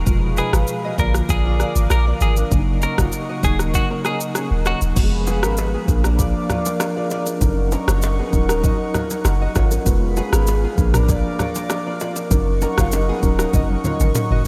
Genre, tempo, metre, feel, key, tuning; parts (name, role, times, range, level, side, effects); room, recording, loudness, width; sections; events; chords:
afrobeats; 98 BPM; 4/4; straight; Eb minor; A4 = 440 Hz
mellow tine electric piano; accompaniment; 0.0-14.5 s; Cb3 to Gb5; -27 LUFS; equal
warm analog pad; sustained chords; 0.0-14.5 s; Ab4 to D6; -30 LUFS; equal; chorus
warm 808-style bass; bass; 0.0-14.5 s; Eb1 to Bb1; -22 LUFS; equal
afro-pop drum kit; drums; 0.1-14.5 s; crash cymbal, kick drum, rim click, shaker, toms; -25 LUFS; equal
direct-recorded clean electric guitar; melody; 0.4-4.8 s; Gb4 to Bb4; -29 LUFS; equal; diffuse ambient delay
nylon-string guitar; riff; 0.4-14.4 s; Cb4 to Eb5; -32 LUFS; equal; analog chorus, diffuse ambient delay
congas and bongos; percussion; 5.0-14.3 s; -32 LUFS; equal
moderate huge ambient reverb, RT60 4.8 s; dreamy mix soaked in reverb; -19 LUFS; mono
0.0-5.0 A section; 5.0-14.5 B section
drum fill 13.5-14.5
0.1 Fdim; 1.0 Bb; 2.5 Gb6; 3.4 Ebm7; 5.0 Fdim; 5.9 Bb; 7.4 Gb6; 8.3 Ebm7; 9.9 Fdim; 10.8 Bb; 12.3 Gb6; 13.2 Ebm7